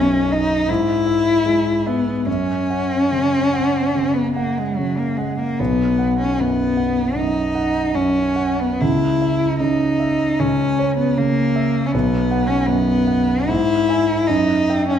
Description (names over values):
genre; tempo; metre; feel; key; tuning
classical, romantic duo for cello and grand piano; 68-83 BPM; 4/4; rubato; B major; A4 = 440 Hz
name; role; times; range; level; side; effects
rich cello; melody; 0.0-15.0 s; F#3 to E4; -18 LUFS; left 2 dB; none
clear concert grand piano; accompaniment; 0.0-15.0 s; B1 to G#5; -20 LUFS; right 2 dB; none
room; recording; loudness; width
wet recital hall reverb, RT60 1.4 s; minimal, uncompressed stereo recording; -16 LUFS; side -9 dB against mid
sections
0.0-15.0 A section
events
none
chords
0.0 B; 0.7 E/G#; 2.3 F#5; 5.6 B; 8.8 A#dim/C#; 11.9 B5; 13.5 E/G#; 14.3 D#(#9)/F#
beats
0.68 1.46 | 2.27 3.11 3.94 4.77 | 5.59 6.38 7.16 7.95 | 8.81 9.61 10.40 11.18 | 11.94 12.68 13.49 14.29